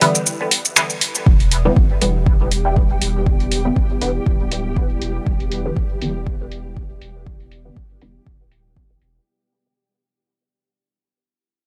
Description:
dub techno; 120 BPM; 4/4; swing 55% on 16ths; E minor; A4 = 442 Hz
filtered dub chord stab; stabs; 0.0-9.1 s; D3 to B3; -24 LUFS; equal; phaser, sidechain pumping, dub echo
deep house drum kit; drums; 0.0-9.1 s; finger snaps, hi-hat, shaker; -21 LUFS; equal; overdrive, low-pass filter on hats, low-pass filter on perc, low-pass filter on snare, low-pass filter on room
deep dark ambient pad; sustained chords; 2.5-9.2 s; B3 to D5; -34 LUFS; equal; chorus, built-in reverb, sidechain pumping
pure sine sub bass; bass; 1.3-9.2 s; D1 to G1; -26 LUFS; equal; transformer saturation, sidechain pumping
electronic kick drum; drums; 1.3-8.9 s; -19 LUFS; equal; overdrive
flickering grainy texture; texture; 1.9-9.3 s; G3 to G4; -32 LUFS; equal; built-in reverb, sidechain pumping
filtered dub chord stab; riff; 1.7-8.7 s; B4 to G5; -32 LUFS; equal; phaser, ensemble chorus, sidechain pumping, dub echo
little or no reverb; dry, gritty hardware recording, transformer saturation; -18 LUFS; mono
0.0-1.3 A section; 1.3-9.3 B section
break 0.0-1.3; band accent 0.8; fade-out 1.3-9.3; filter sweep on synth stab 1.3-9.3
0.0 Em7

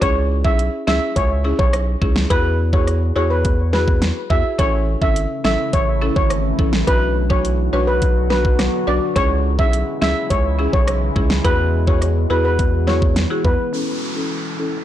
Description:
dancehall; 105 BPM; 4/4; straight; A major; A4 = 438 Hz
steel pan; melody; 0.0-13.6 s; B4 to E5; -22 LUFS; equal; ping-pong delay
buzzing marimba with hard mallets; accompaniment; 0.0-14.8 s; C#4 to B4; -25 LUFS; left 2 dB; sidechain pumping, low-pass filter
saturated sub bass; bass; 0.0-13.6 s; G#1 to E2; -20 LUFS; equal
pop drum kit; drums; 0.0-13.6 s; hi-hat, kick drum, rim click, snare drum; -19 LUFS; equal; overdrive, vintage 12-bit sampler grit
deep dark ambient pad; sustained chords; 5.3-14.8 s; C#3 to A4; -26 LUFS; equal; chorus, built-in reverb, sidechain pumping, low-pass filter
downlifter; sound effects; 13.7-14.8 s; -28 LUFS; right 1 dB
digital ambience; blown-out, overdriven recording, overdrive; -15 LUFS; side -12 dB against mid
0.0-13.7 A section; 13.7-14.8 B section
filter sweep 13.7-14.8
0.0 C#m; 2.3 Eadd9; 4.6 A; 6.9 Bm; 9.2 C#m; 11.4 Eadd9; 13.7 A

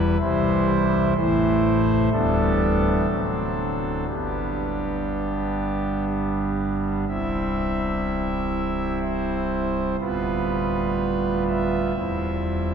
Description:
classical, chorale-style piece for pipe organ; 62 BPM; 3/4; rubato; G major, C major from 7.1 s; A4 = 440 Hz
pipe organ, foundations; solo; 0.0-12.7 s; C1 to E5; -21 LUFS; equal
wet cathedral reverb, RT60 5.8 s; heard from further back in the room, nothing above 10.5 kHz; -21 LUFS; side -7 dB against mid
0.0-7.1 A section; 7.1-12.7 B section
0.2 C; 1.2 Am; 2.1 G/D; 3.1 D7; 4.1 G; 7.1 C; 10.0 G7/D; 12.0 C/E

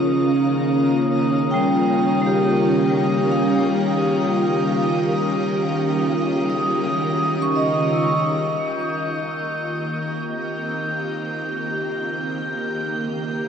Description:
ambient; free time; Db lydian; A4 = 440 Hz
soft additive organ-like pad; sustained chords; 0.0-13.5 s; Eb3 to Bb4; -21 LUFS; equal; ensemble chorus, built-in reverb
bowed-like drone; drone; 0.0-13.5 s; Db3 to Bb3; -29 LUFS; right 1 dB; built-in reverb
glass harmonica; texture; 0.0-13.5 s; Eb6 to G6; -29 LUFS; equal
vibraphone with medium hard mallets; arpeggios; 0.9-8.8 s; G3 to Eb6; -23 LUFS; left 1 dB; ping-pong delay
wet shimmer reverb, RT60 8.1 s; worn, warbling old tape, cassette tape, warbly pitch drift; -18 LUFS; side -7 dB against mid
0.0-8.6 A section; 8.6-13.5 B section
filter sweep on ambient pad 0.0-8.6
0.0 Db69; 1.3 Eb9; 8.6 Dbmaj7

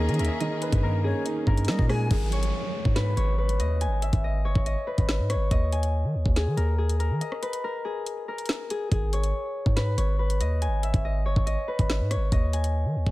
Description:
hip hop, drill; 141 BPM; 4/4; half-time; G# minor; A4 = 441 Hz
Celtic harp; melody; 0.0-13.1 s; G#4 to G#5; -30 LUFS; left 2 dB; low-pass filter, digital delay
silver concert flute; second line; 0.0-2.1 s; C#5 to G#5; -38 LUFS; left 4 dB; digital delay
warm concert grand piano; accompaniment; 0.0-2.1 s; D#3 to G#4; -30 LUFS; right 4 dB; low-pass filter
rich studio string section; sustained chords; 0.0-2.1 s; D#3 to G#4; -37 LUFS; left 2 dB
hard-hitting 808-style bass; bass; 0.0-13.1 s; G1 to G3; -25 LUFS; equal
drill drum kit; drums; 0.1-13.1 s; crash cymbal, hi-hat, kick drum, rim click, snare drum; -26 LUFS; equal; overdrive
downlifter; sound effects; 2.1-5.5 s; -37 LUFS; right 2 dB
small room ambience; -23 LUFS; side -18 dB against mid
0.0-2.1 A section; 2.1-13.1 B section
break 7.2-8.9
0.0 D#7sus4; 2.1 G#m; 5.5 D#sus4; 8.9 G#m; 12.3 D#sus4

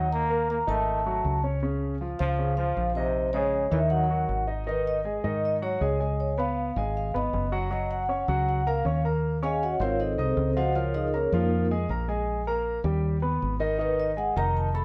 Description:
jazz; 158 BPM; 4/4; straight; G# dorian from 4.7 s; A4 = 439 Hz
vibraphone with soft mallets; melody; 0.0-14.8 s; A#3 to B5; -31 LUFS; equal
brilliant trombone; second line; 0.0-4.4 s; B#2 to A#3; -35 LUFS; equal
warm concert grand piano; accompaniment; 0.0-14.8 s; C#3 to D#6; -33 LUFS; equal
fingered electric bass; bass; 0.0-14.8 s; E#1 to G#2; -31 LUFS; equal
moderate club reverb, RT60 0.9 s; heard from further back in the room; -27 LUFS; mono
0.0-4.7 A section; 4.7-14.8 B section
vibraphone solo 4.7-14.8
0.1 D#5; 0.9 G#5; 1.6 C#69; 3.1 A#m11; 3.9 D#madd11; 4.7 G#5; 6.2 C#9; 7.7 F#6; 9.2 D#m11; 10.0 G#7b9; 10.8 C#69; 12.3 D#add11/A#; 13.0 D#aug; 13.8 G#5

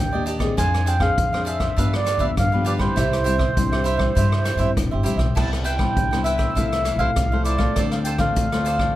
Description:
samba and choro; 100 BPM; 4/4; straight; C major; A4 = 440 Hz
mellow accordion; melody; 0.0-9.0 s; C5 to A5; -24 LUFS; right 1 dB; slapback echo, plate reverb
nylon-string guitar; accompaniment; 0.0-8.9 s; G2 to Ab4; -27 LUFS; left 4 dB
upright bass; bass; 0.0-8.9 s; E1 to G2; -23 LUFS; equal
cavaquinho; accompaniment; 0.1-9.0 s; D4 to G5; -28 LUFS; right 4 dB
swinging big-band drum kit; drums; 0.3-8.9 s; crash cymbal, hi-hat, kick drum, rim click; -25 LUFS; equal
light reverb; -18 LUFS; side -14 dB against mid
0.0-5.4 A section; 5.4-9.0 A section
0.0 Ebmaj7; 0.6 Fm6; 1.8 G7; 3.0 C; 5.4 Cmaj7; 6.6 Fmaj7/C; 7.8 Dm7

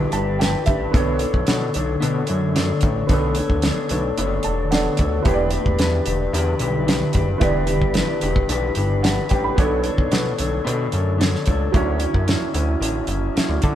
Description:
indie pop, bedroom pop; 111 BPM; 4/4; straight; A4 = 441 Hz
dark upright piano; accompaniment; 0.0-13.8 s; F#3 to B5; -27 LUFS; right 6 dB
electric guitar through a small old amp; accompaniment; 0.0-13.8 s; D3 to C#5; -24 LUFS; left 4 dB; vibrato effect
shimmering ambient pad; sustained chords; 0.0-13.8 s; D3 to E4; -28 LUFS; equal; chorus, built-in reverb, phaser
fat analog bass; bass; 0.0-13.8 s; E1 to D3; -23 LUFS; equal
damped 70s drum kit; drums; 0.1-13.8 s; hi-hat, kick drum, snare drum; -21 LUFS; equal
moderate stone room reverb, RT60 1.4 s; band playing live in one room; -18 LUFS; side -11 dB against mid
0.0-13.8 A section
upright piano fill 0.0-0.9, 4.2-5.3
0.0 Em7; 0.9 Bm9; 5.3 Em7; 9.6 Bm9; 11.7 Dmaj9

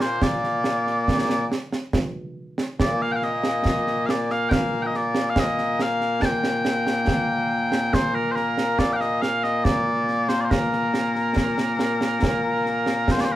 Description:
scottish traditional, Scottish pipe music; 70 BPM; 3/4; straight; Bb major; A4 = 440 Hz
mellow small bagpipes; melody; 0.0-13.4 s; Bb2 to A5; -22 LUFS; left 1 dB
concert snare drum and concert bass drum; drums; 0.0-13.3 s; -25 LUFS; right 2 dB
moderate studio reverb, RT60 0.5 s; band playing live in one room; -20 LUFS; side -14 dB against mid
0.0-13.1 A section

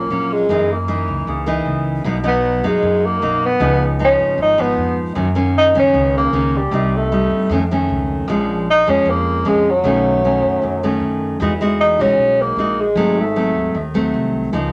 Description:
bossa nova; 154 BPM; 4/4; straight; A4 = 437 Hz
dark tenor saxophone; melody; 0.0-14.0 s; Gb3 to Eb4; -18 LUFS; equal
nylon-string guitar; accompaniment; 0.0-14.7 s; F2 to F#4; -21 LUFS; equal
upright bass; bass; 0.0-14.7 s; Ab1 to G2; -26 LUFS; equal
moderate studio reverb, RT60 0.6 s; -17 LUFS; mono
0.0-14.7 A section
0.5 Gb6; 2.0 Bmaj7; 3.6 Db9; 5.2 Gb6; 6.7 Cm7; 7.5 Faug7; 8.3 Bbm7; 9.8 B9; 11.4 Emaj9; 13.0 Ab7b9

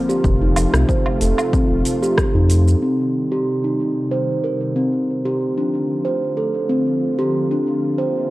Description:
organic downtempo; 93 BPM; 4/4; swing 53% on 16ths; C dorian; A4 = 439 Hz
warm analog pad; sustained chords; 0.0-8.3 s; C3 to F4; -26 LUFS; equal; chorus, sidechain pumping
steel tongue drum; arpeggios; 0.1-8.1 s; C4 to C5; -19 LUFS; right 1 dB; low-pass filter, tape echo
deep house drum kit; drums; 0.1-2.8 s; hi-hat, rim click, shaker, woodblock; -24 LUFS; equal; overdrive, low-pass filter on perc, studio reverb, low-pass filter on hats, low-pass filter on snare
round analog bass; bass; 0.2-2.8 s; F1 to F2; -16 LUFS; equal; sidechain pumping
electronic kick drum; drums; 0.2-2.3 s; -20 LUFS; equal; overdrive, studio reverb
riser; sound effects; 8.2-8.3 s; -40 LUFS; equal
light reverb, digital ambience; dry, gritty hardware recording; -16 LUFS; side -18 dB against mid
0.0-2.8 A section; 2.8-8.3 B section
filter sweep on steel tongue drum 0.0-2.8; filter sweep on analog synth pad 2.8-8.3
0.2 F; 2.8 Cm; 5.4 Dm

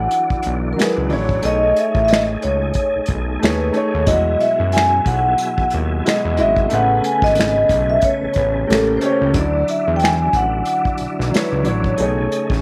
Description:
R&B, neo-soul; 91 BPM; 4/4; swing 56% on 16ths; E major; A4 = 440 Hz
vibraphone with medium mallets; melody; 0.0-12.6 s; A4 to G#5; -20 LUFS; equal
clear upright piano; accompaniment; 0.0-12.6 s; F#3 to F#5; -26 LUFS; equal
tonewheel organ; sustained chords; 0.0-12.6 s; B2 to G#4; -29 LUFS; equal; slow rotary speaker, chorus vibrato
fat analog bass; bass; 0.0-12.6 s; G#1 to F#2; -24 LUFS; equal
unplugged drum kit; drums; 0.1-12.6 s; finger snaps, hi-hat, kick drum, snare drum; -23 LUFS; equal
light reverb, small room ambience; -17 LUFS; mono
0.0-12.6 A section
0.0 Dmaj9; 1.4 B13; 4.1 Emaj9; 6.7 Amaj9; 8.7 A7b9; 9.3 Dmaj9; 12.0 B13

